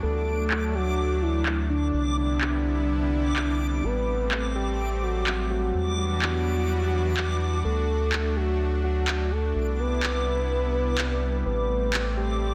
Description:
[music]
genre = progressive house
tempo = 126 BPM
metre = 4/4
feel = straight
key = A dorian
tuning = A4 = 440 Hz
[part]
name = soft octave-layered synth lead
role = melody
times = 0.0-12.5 s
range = D4 to B4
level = -30 LUFS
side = equal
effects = chorus, delay
[part]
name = supersaw pad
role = sustained chords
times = 0.0-12.5 s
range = C3 to F#4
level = -35 LUFS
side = equal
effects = none
[part]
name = round analog bass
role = bass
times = 0.0-12.5 s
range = A1 to E2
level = -29 LUFS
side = equal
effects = none
[part]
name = backwards swelling texture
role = texture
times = 0.0-12.5 s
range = D6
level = -39 LUFS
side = equal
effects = built-in reverb
[part]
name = electronic handclaps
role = drums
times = 0.5-12.0 s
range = none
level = -32 LUFS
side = equal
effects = low-pass filter on snare, studio reverb, low-pass filter on hats, low-pass filter on toms, low-pass filter on cymbals
[sound]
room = light reverb, digital ambience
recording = none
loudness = -26 LUFS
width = mono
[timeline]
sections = 0.0-12.5 A section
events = filter sweep on drum 0.0-12.5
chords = 0.0 D; 1.9 Cmaj7; 3.8 Am7; 5.7 Em7; 7.6 D; 9.6 Cmaj7; 11.5 Am7

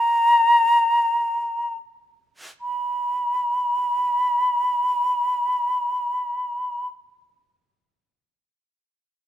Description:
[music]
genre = classical, free, expressive piece for unaccompanied flute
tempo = free time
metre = none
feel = none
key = unclear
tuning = A4 = 440 Hz
[part]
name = mellow concert flute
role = solo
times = 0.0-6.9 s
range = A#5 to B5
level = -19 LUFS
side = equal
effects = none
[sound]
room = light reverb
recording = minimal, uncompressed stereo recording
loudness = -19 LUFS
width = side -11 dB against mid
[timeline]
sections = 0.0-2.6 A section; 2.6-6.8 B section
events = slowing down 0.0-2.6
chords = none

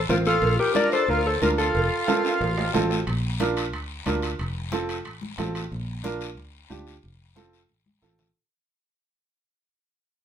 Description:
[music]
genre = latin, cumbia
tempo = 182 BPM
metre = 4/4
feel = straight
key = Bb major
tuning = A4 = 440 Hz
[part]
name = accordion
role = second line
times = 0.0-2.7 s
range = F4 to Bb4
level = -27 LUFS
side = right 1 dB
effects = none
[part]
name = fingered electric bass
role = bass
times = 0.0-8.3 s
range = F1 to D2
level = -29 LUFS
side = equal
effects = none
[part]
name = mellow electric guitar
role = melody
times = 0.1-2.7 s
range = F4 to D5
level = -24 LUFS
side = left 2 dB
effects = spring reverb
[part]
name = warm upright piano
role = accompaniment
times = 0.1-8.3 s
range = C4 to C5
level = -27 LUFS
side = right 4 dB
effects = none
[part]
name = congas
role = percussion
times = 0.1-8.3 s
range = none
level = -33 LUFS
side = left 2 dB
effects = none
[part]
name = guiro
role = percussion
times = 0.1-8.4 s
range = none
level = -36 LUFS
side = left 6 dB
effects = none
[part]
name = cowbell and timbales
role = percussion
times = 0.4-5.7 s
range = none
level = -32 LUFS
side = right 3 dB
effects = none
[sound]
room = wet studio reverb, RT60 0.6 s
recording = band playing live in one room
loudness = -22 LUFS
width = side -9 dB against mid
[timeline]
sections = 0.0-3.1 A section; 3.1-8.4 B section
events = drum fill 2.1-3.1, 7.9-8.4; fade-out 3.1-8.4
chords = 0.4 Bb; 1.7 F; 3.1 Bb; 4.4 F; 5.7 Bb; 7.0 F

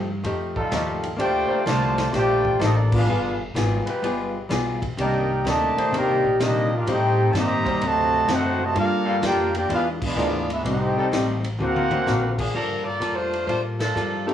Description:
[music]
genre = jazz, big band swing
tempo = 127 BPM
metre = 4/4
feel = swing 66% on 8ths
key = G minor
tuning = A4 = 439 Hz
[part]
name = archtop guitar, miked and amplified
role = accompaniment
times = 0.0-14.3 s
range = A2 to C5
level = -28 LUFS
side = left 4 dB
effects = cassette tape
[part]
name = upright bass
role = bass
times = 0.0-14.3 s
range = G1 to Bb2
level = -27 LUFS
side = equal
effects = none
[part]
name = swinging big-band drum kit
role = drums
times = 0.2-14.3 s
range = crash cymbal, hi-hat, kick drum, ride cymbal, snare drum, toms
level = -31 LUFS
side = equal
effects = cassette tape
[part]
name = clear trombone section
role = sustained chords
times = 0.6-12.5 s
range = F3 to D5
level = -30 LUFS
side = left 2 dB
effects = cassette tape
[part]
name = warm trumpet section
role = melody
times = 1.2-12.4 s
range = Bb3 to Bb5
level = -24 LUFS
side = equal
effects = cassette tape
[part]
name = bright trombone section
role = second line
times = 1.2-12.3 s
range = Bb2 to G4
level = -25 LUFS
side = right 1 dB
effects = cassette tape
[part]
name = warm saxophone section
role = melody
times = 12.4-14.3 s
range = Eb3 to D5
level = -25 LUFS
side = equal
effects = cassette tape
[part]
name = warm baby grand piano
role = accompaniment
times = 14.3 s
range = G3 to A4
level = -23 LUFS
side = equal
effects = cassette tape
[sound]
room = moderate spring reverb, RT60 1.2 s, studio ambience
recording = home recording on cassette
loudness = -20 LUFS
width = side -10 dB against mid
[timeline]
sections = 0.0-12.5 A section; 12.5-14.3 B section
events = band accent 2.8, 9.9, 13.7; drum fill 11.6-12.1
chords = 0.0 F9; 1.2 Bbmaj9; 3.1 G7b9; 5.0 Cm9; 6.9 Am7b5; 7.8 D7b9; 8.8 Gm9; 9.7 E7b9; 10.6 Am7b5; 11.6 D7alt; 12.5 Gm9

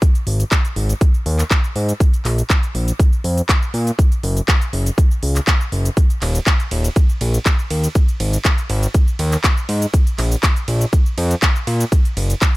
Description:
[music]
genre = progressive house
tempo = 121 BPM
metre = 4/4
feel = straight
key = unclear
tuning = A4 = 440 Hz
[part]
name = electronic kick drum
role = drums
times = 0.0-12.5 s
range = none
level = -14 LUFS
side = equal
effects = none
[part]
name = house drum kit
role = drums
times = 0.0-12.5 s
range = cabasa, handclaps, hi-hat, ride cymbal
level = -23 LUFS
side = equal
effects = none
[part]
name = fat analog bass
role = bass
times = 0.3-12.3 s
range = Eb1 to Bb2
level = -17 LUFS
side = equal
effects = sidechain pumping
[sound]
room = little or no reverb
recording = none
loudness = -15 LUFS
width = side -20 dB against mid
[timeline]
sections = 0.0-12.6 A section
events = none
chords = none

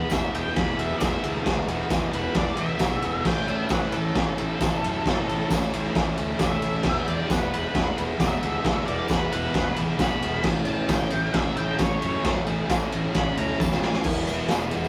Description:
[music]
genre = garage rock duo or trio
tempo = 134 BPM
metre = 4/4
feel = straight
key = E mixolydian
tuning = A4 = 437 Hz
[part]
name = octave-fuzz lead guitar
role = melody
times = 0.0-14.1 s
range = A4 to B5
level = -33 LUFS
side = equal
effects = distortion
[part]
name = biting overdriven guitar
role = riff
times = 0.0-14.9 s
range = A2 to E4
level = -31 LUFS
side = equal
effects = none
[part]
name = fuzz fingered electric bass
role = bass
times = 0.0-14.9 s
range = E1 to A2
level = -34 LUFS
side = equal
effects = overdrive
[part]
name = raw garage drum kit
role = drums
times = 0.1-14.8 s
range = crash cymbal, kick drum, ride cymbal, snare drum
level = -28 LUFS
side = equal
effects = none
[part]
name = tambourine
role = percussion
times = 0.1-14.9 s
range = none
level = -47 LUFS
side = equal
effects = none
[sound]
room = moderate studio reverb, RT60 0.5 s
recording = rough rehearsal-room recording, tube saturation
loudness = -25 LUFS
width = mono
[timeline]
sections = 0.0-14.1 A section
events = lead electric guitar solo 0.0-14.1; drum fill 13.6-14.1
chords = 0.0 E; 3.3 A; 6.9 E; 10.4 A; 14.1 E

